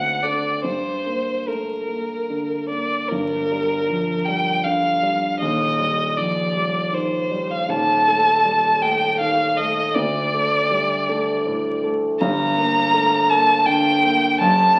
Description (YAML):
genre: classical, romantic duo for violin and grand piano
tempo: 72-84 BPM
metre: 3/4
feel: rubato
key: G minor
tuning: A4 = 440 Hz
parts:
  - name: rich violin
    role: melody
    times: 0.0-14.8 s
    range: Bb4 to Bb5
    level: -21 LUFS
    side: equal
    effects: none
  - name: dark concert grand piano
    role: accompaniment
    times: 0.0-14.8 s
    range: Eb1 to A4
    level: -25 LUFS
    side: equal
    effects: none
room: wet recital hall reverb, RT60 1.4 s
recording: very old 78 rpm record, vinyl crackle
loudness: -20 LUFS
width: mono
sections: 0.0-3.1 A section; 3.1-14.8 A section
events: none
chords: 0.0 D; 0.7 Gm; 5.4 Ebmaj13; 7.7 F9/Eb (rootless); 10.0 D5; 12.2 Gm